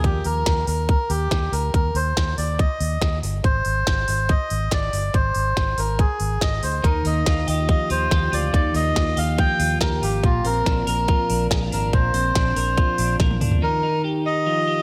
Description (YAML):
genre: jangly indie pop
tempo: 141 BPM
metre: 4/4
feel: straight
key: Eb major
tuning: A4 = 441 Hz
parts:
  - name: melodica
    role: melody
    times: 0.0-14.8 s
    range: F4 to G5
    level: -26 LUFS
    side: equal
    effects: slapback echo
  - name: twelve-string electric guitar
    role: arpeggios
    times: 0.0-0.6, 6.8-14.8 s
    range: Bb2 to Bb4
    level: -29 LUFS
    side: equal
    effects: none
  - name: vintage muted fingered electric bass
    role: bass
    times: 0.0-13.6 s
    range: G1 to Eb2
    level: -26 LUFS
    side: equal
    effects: none
  - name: minimal click drum kit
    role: drums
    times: 0.0-13.6 s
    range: hi-hat, kick drum, snare drum, toms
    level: -25 LUFS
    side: equal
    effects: none
room: light reverb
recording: none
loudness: -21 LUFS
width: mono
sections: 0.0-13.6 A section; 13.6-14.8 B section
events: drum fill 13.2-13.6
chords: 0.0 Eb5; 3.4 Ab; 6.8 Ebadd9; 10.2 Bbadd9; 13.6 Ebadd9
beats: | 0.04 0.47 0.89 1.32 | 1.74 2.17 2.59 3.02 | 3.44 3.87 4.29 4.72 | 5.14 5.57 6.00 6.42 | 6.84 7.27 7.69 8.12 | 8.54 8.96 9.39 9.81 | 10.24 10.66 11.09 11.51 | 11.93 12.36 12.78 13.20 | 13.62 14.04 14.47